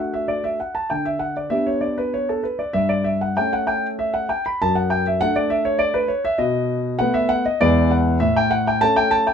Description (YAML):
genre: classical-period piano sonatina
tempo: 99 BPM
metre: 3/4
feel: rubato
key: D major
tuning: A4 = 440 Hz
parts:
  - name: dark concert grand piano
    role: solo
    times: 0.0-9.3 s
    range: E2 to B5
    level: -18 LUFS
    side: equal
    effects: none
room: light reverb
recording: close, detailed microphones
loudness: -18 LUFS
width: side -7 dB against mid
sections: 0.0-9.3 A section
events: none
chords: 0.0 D; 0.9 G/D; 2.8 A7/G; 4.6 D/F#; 6.4 B7; 7.6 E7; 8.2 A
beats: 0.29 | 0.90 1.52 2.14 | 2.75 3.37 3.98 | 4.59 5.20 5.80 | 6.40 7.00 7.60 | 8.21 8.81